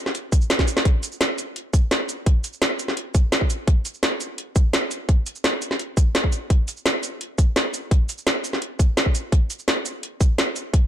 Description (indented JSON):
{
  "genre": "drum and bass",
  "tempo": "170 BPM",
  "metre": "4/4",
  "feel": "straight",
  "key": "none",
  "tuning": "none",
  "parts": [
    { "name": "drum and bass drum kit", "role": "drums", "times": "0.1-10.8 s", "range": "hi-hat, shaker, snare drum", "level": "-22 LUFS", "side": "equal", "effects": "none" },
    { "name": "electronic kick drum", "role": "drums", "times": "0.3-10.8 s", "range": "none", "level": "-18 LUFS", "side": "equal", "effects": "none" }
  ],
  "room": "light reverb",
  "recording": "dark, warm production",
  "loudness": "-19 LUFS",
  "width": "side -11 dB against mid",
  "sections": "0.0-10.9 A section",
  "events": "drum fill 0.6",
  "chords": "none",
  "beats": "0.15 0.50 | 0.85 1.21 1.56 1.91 | 2.27 2.62 2.97 3.33 | 3.68 4.03 4.38 4.74 | 5.09 5.44 5.79 6.15 | 6.50 6.85 7.21 7.56 | 7.91 8.27 8.62 8.97 | 9.32 9.68 10.03 10.38 | 10.74"
}